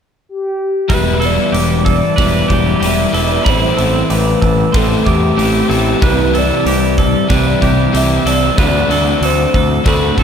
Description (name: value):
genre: rock, shoegaze and dream pop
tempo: 94 BPM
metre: 4/4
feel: straight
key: E minor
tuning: A4 = 435 Hz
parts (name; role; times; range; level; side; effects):
- mellow horn-like synth lead; melody; 0.3-10.2 s; G4 to E5; -18 LUFS; left 1 dB; chorus, ping-pong delay
- twangy electric guitar; arpeggios; 0.9-10.2 s; G4 to B5; -20 LUFS; right 5 dB; lush chorus, ping-pong delay
- crunchy overdriven guitar; riff; 0.9-10.2 s; E2 to F#4; -20 LUFS; right 8 dB; reverse reverb
- overdriven semi-hollow guitar; riff; 0.9-10.2 s; A2 to F#4; -17 LUFS; left 7 dB; analog chorus
- growling picked electric bass; bass; 0.9-10.2 s; E1 to A2; -17 LUFS; equal; overdrive
- huge arena drum kit; drums; 0.9-10.2 s; hi-hat, kick drum; -19 LUFS; equal; none
room: wet cathedral reverb, RT60 5.4 s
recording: dreamy mix soaked in reverb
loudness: -11 LUFS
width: side -7 dB against mid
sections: 0.9-10.2 A section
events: none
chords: 0.0 N.C.; 0.9 Em7; 3.5 Am7; 6.0 Cmaj7; 8.6 D5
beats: 0.26 | 0.90 1.54 2.18 2.82 | 3.46 4.10 4.74 5.38 | 6.02 6.66 7.30 7.94 | 8.58 9.22 9.86